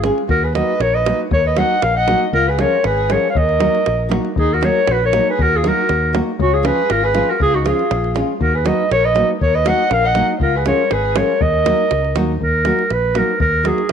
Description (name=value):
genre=balkan folk, Balkan wedding band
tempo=119 BPM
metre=2/4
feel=swing 53% on 16ths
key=Eb minor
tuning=A4 = 440 Hz
part: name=warm clarinet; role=melody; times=0.0-13.9 s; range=Gb4 to Gb5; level=-17 LUFS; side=right 2 dB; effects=none
part: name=dark violin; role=second line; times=0.0-12.2 s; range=Db4 to Eb5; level=-22 LUFS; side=left 13 dB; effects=none
part: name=nylon-string guitar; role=accompaniment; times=0.0-13.8 s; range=F3 to Ab4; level=-22 LUFS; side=right 1 dB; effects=none
part: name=fingered electric bass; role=bass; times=0.0-13.7 s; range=Ab1 to Eb2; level=-20 LUFS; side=equal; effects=none
part: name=davul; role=percussion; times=0.0-13.9 s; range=none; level=-23 LUFS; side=right 2 dB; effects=none
room=light reverb, studio ambience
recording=1960s-style stereo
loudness=-14 LUFS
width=side -7 dB against mid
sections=0.0-4.4 A section; 4.4-12.4 A section; 12.4-13.9 B section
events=clarinet solo 12.4-13.9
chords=0.3 Ebm; 2.3 Db; 3.4 Ebm; 6.4 Db; 8.4 Ebm; 10.4 Db; 11.4 Ebm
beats=| 0.30 0.81 | 1.32 1.83 | 2.34 2.85 | 3.36 3.87 | 4.38 4.88 | 5.39 5.89 | 6.40 6.90 | 7.40 7.91 | 8.41 8.91 | 9.41 9.91 | 10.41 10.91 | 11.40 11.90 | 12.40 12.90 | 13.40 13.90